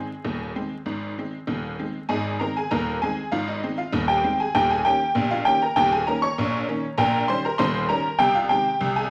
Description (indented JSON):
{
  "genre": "ragtime piano",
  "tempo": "98 BPM",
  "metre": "2/4",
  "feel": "straight",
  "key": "Ab major",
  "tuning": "A4 = 440 Hz",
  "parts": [
    { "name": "tack piano", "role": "solo", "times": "0.0-9.1 s", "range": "Eb1 to Db6", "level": "-24 LUFS", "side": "equal", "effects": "none" }
  ],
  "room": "moderate large studio reverb, RT60 1.2 s",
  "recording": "vinyl crackle",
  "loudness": "-23 LUFS",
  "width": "mono",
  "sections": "0.0-2.1 A section; 2.1-9.1 B section",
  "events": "none",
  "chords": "0.0 Ab; 4.5 Eb7; 7.0 Eb7/Bb; 8.2 Ab/C"
}